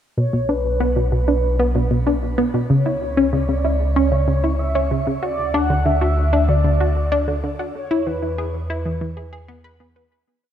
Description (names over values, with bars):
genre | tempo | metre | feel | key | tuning
ambient, sequencer-driven space music | 95 BPM | 4/4 | straight | B dorian | A4 = 439 Hz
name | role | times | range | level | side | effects
mellow horn-like synth lead | melody | 0.2-9.6 s | B4 to F#5 | -25 LUFS | equal | analog chorus, shimmer reverb, analog delay
analog pluck | riff | 0.2-10.1 s | B2 to B4 | -20 LUFS | equal | chorus, phaser, shimmer reverb, analog delay
round analog bass | bass | 0.2-10.2 s | B1 to E2 | -21 LUFS | equal | none
room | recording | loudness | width
moderate plate reverb, RT60 3.0 s | dark, warm production | -17 LUFS | side -10 dB against mid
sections
0.2-10.3 A section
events
filter sweep on synth arpeggio sound 0.2-10.3; fade-out 6.9-10.3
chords
0.2 Bm; 2.7 C#m; 5.2 D; 7.8 E